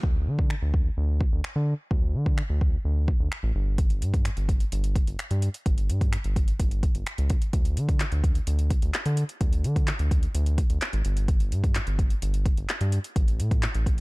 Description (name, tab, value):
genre	dance-pop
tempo	128 BPM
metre	4/4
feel	straight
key	unclear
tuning	A4 = 440 Hz
part	round analog bass	bass	0.0-14.0 s	G1 to D3	-25 LUFS	equal	sidechain pumping
part	deep house drum kit	drums	0.0-14.0 s	finger snaps, handclaps, hi-hat, kick drum	-25 LUFS	equal	none
room	little or no reverb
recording	dark, warm production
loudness	-23 LUFS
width	side -25 dB against mid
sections	0.0-14.0 A section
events	none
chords	none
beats	| 0.03 0.50 0.97 1.44 | 1.91 2.38 2.85 3.31 | 3.78 4.25 4.72 5.19 | 5.66 6.13 6.60 7.07 | 7.53 8.00 8.47 8.94 | 9.41 9.88 10.35 10.81 | 11.28 11.75 12.22 12.69 | 13.16 13.63